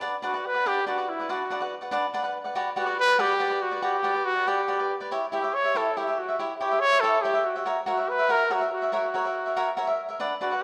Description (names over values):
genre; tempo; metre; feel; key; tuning
mexican folk, mariachi; 94 BPM (dotted quarters); 6/8; straight; B minor; A4 = 441 Hz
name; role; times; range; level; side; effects
cavaquinho; accompaniment; 0.0-10.6 s; D4 to F#5; -30 LUFS; equal; none
warm trumpet; melody; 0.2-10.6 s; E4 to C#5; -27 LUFS; equal; none
room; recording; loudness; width
wet recital hall reverb, RT60 1.3 s; none; -26 LUFS; mono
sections
0.0-10.6 A section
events
none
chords
0.0 Bm; 2.6 Gmaj7; 5.1 C#dim/E; 7.7 F#7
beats
| 0.03 0.67 | 1.30 1.93 | 2.56 3.20 | 3.83 4.47 | 5.12 5.76 | 6.40 7.04 | 7.67 8.30 | 8.93 9.56 | 10.20